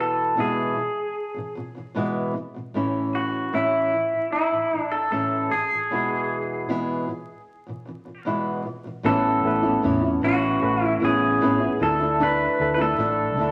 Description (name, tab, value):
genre	acoustic pop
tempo	76 BPM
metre	4/4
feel	straight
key	A major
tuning	A4 = 440 Hz
part	electric guitar through a small old amp	melody	0.0-13.5 s	E4 to B4	-26 LUFS	equal	spring reverb
part	nylon-string guitar	accompaniment	0.0-13.5 s	E2 to E4	-27 LUFS	equal	none
part	barky reed electric piano	accompaniment	9.0-13.5 s	A3 to B4	-32 LUFS	equal	overdrive
part	fretless electric bass	bass	9.0-13.5 s	A1 to E2	-34 LUFS	equal	none
room	wet large studio reverb, RT60 0.9 s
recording	vinyl crackle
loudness	-23 LUFS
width	mono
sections	0.0-9.1 A section; 9.1-13.5 B section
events	none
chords	0.0 E; 2.7 A; 5.9 E; 9.1 Aadd9; 11.8 Dsus2